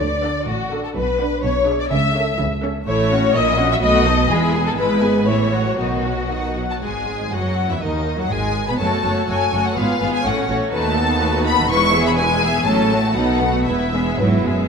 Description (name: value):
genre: quick classical-period movement for string orchestra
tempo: 114-127 BPM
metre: 2/4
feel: rubato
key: E major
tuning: A4 = 440 Hz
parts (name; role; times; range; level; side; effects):
- rich chamber violin section; second line; 0.0-14.7 s; D#4 to E5; -21 LUFS; left 3 dB; none
- rich symphonic cello section; bass; 0.0-14.7 s; D#2 to G#3; -23 LUFS; right 2 dB; none
- rich symphonic double bass section; bass; 0.0-14.5 s; E1 to D#2; -25 LUFS; right 2 dB; none
- warm symphonic violin section; melody; 0.2-14.4 s; D#5 to C#6; -23 LUFS; left 4 dB; none
- clear symphonic viola section; accompaniment; 0.2-14.7 s; D#3 to B4; -23 LUFS; right 1 dB; none
room: wet scoring stage reverb, RT60 1.6 s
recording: none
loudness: -16 LUFS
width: side -6 dB against mid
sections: 0.0-6.8 A section; 6.8-14.7 B section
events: none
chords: 0.0 D; 1.0 Bm; 1.4 E7/B; 1.9 A/C#; 2.9 F#m7/A; 3.3 F#7/A#; 3.8 B7; 4.3 E; 4.8 E/G#; 5.3 F#m7/A; 5.8 B; 6.8 E/G#; 7.8 D#m; 8.3 G#m; 8.8 F#m; 9.8 Fdim/Ab; 10.3 F#m/A; 10.7 B7/D#; 11.7 E; 12.7 F#m/A; 13.1 B7; 13.7 E